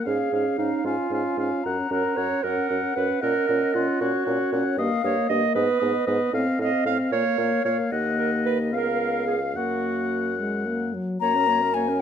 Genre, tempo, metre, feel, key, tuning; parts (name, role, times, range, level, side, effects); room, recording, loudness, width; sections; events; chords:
quick classical-period movement for wind quintet; 76 BPM (dotted quarters); 6/8; rubato; F# major; A4 = 439 Hz
silver concert flute; melody; 0.0-12.0 s; C#5 to A#5; -29 LUFS; left 8 dB
warm oboe; second line; 0.0-11.0 s; D#5 to F#5; -30 LUFS; left 5 dB
mellow French horn; accompaniment; 0.0-12.0 s; F#3 to C#4; -28 LUFS; left 1 dB
clear clarinet; accompaniment; 0.1-12.0 s; D#4 to F5; -26 LUFS; right 7 dB
mellow bassoon; bass; 0.1-12.0 s; C#2 to A#2; -30 LUFS; right 2 dB
moderate recital hall reverb, RT60 1.3 s; close, detailed microphones; -21 LUFS; side -8 dB against mid
0.0-11.2 A section
0.1 C#/G#; 1.6 F#; 3.2 F#/A#; 4.8 D#/G; 5.6 G#m; 6.3 F7/A; 7.1 A#m; 7.9 D#m; 8.7 C#7; 9.6 F#